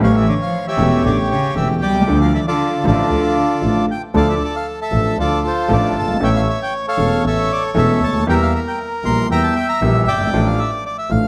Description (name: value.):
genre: tango.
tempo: 116 BPM.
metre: 4/4.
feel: rubato.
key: D minor.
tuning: A4 = 439 Hz.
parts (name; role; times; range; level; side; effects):
bandoneon; melody; 0.0-11.3 s; F4 to C6; -21 LUFS; equal; none.
warm cello; second line; 0.0-3.8 s; C#3 to G3; -24 LUFS; equal; none.
warm concert grand piano; accompaniment; 0.0-11.3 s; E1 to A4; -22 LUFS; equal; none.
rich double bass; bass; 0.0-11.3 s; E1 to E2; -22 LUFS; equal; none.
room: moderate scoring stage reverb, RT60 1.6 s.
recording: none.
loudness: -17 LUFS.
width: mono.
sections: 0.0-4.1 A section; 4.1-11.3 A section.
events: none.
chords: 0.0 A7; 2.1 Dm; 6.2 A; 8.3 Edim; 10.3 Dm/A.